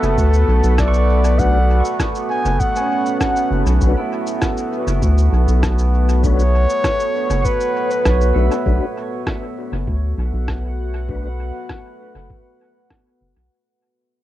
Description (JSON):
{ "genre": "ambient dub", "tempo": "99 BPM", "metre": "4/4", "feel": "straight", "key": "B minor", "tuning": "A4 = 440 Hz", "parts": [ { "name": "trumpet with bucket mute", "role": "melody", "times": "0.0-8.4 s", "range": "A4 to G#5", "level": "-21 LUFS", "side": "equal", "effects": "cassette tape, dub echo" }, { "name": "deep dark ambient pad", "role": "sustained chords", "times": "0.0-13.5 s", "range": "A3 to F#5", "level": "-24 LUFS", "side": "equal", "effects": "chorus, built-in reverb" }, { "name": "pedal steel guitar", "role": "arpeggios", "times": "0.0-9.7 s", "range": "C#4 to C#6", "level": "-29 LUFS", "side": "right 7 dB", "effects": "dub echo" }, { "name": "round analog bass", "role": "bass", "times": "0.0-13.5 s", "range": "F#1 to D2", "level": "-16 LUFS", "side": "equal", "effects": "none" }, { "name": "electronic shaker and rim click", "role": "drums", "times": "0.0-13.0 s", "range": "none", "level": "-28 LUFS", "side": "equal", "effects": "low-pass filter on perc, studio reverb, cassette tape, low-pass filter on snare, dub echo" }, { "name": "electronic kick drum", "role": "drums", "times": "0.2-13.0 s", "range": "none", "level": "-23 LUFS", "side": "equal", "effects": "studio reverb, cassette tape" }, { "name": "mellow tonewheel organ", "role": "stabs", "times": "1.4-11.3 s", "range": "A3 to B4", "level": "-29 LUFS", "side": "left 8 dB", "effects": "chorus vibrato, fast rotary speaker, low-pass filter, dub echo" } ], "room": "light reverb", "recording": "home recording on cassette", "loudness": "-15 LUFS", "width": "side -14 dB against mid", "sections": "0.0-8.7 A section; 8.7-13.5 B section", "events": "fade-out 8.7-13.5", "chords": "0.0 Bm7" }